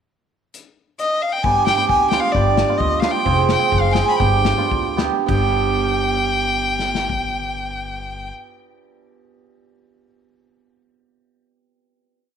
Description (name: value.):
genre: klezmer.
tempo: 99-133 BPM.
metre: 2/4.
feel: straight.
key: G phrygian dominant.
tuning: A4 = 440 Hz.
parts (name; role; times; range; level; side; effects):
modern studio drum kit; drums; 0.5-7.2 s; crash cymbal, hi-hat, kick drum, snare drum; -25 LUFS; left 6 dB; none.
rich violin; melody; 1.0-8.3 s; D5 to B5; -20 LUFS; left 2 dB; none.
upright bass; bass; 1.4-8.3 s; F1 to D2; -23 LUFS; left 2 dB; none.
cimbalom; accompaniment; 1.5-9.4 s; B3 to Ab4; -21 LUFS; right 10 dB; none.
room: moderate echo chamber reverb, RT60 1.3 s, studio reverb.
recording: 1960s-style stereo with parts hard left and right.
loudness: -16 LUFS.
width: side -8 dB against mid.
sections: 0.5-1.4 pickup bar; 1.4-5.3 A section; 5.3-7.7 final chord.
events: slowing down 3.3-5.3.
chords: 0.5 N.C.; 1.4 G; 3.3 Fm; 4.2 G.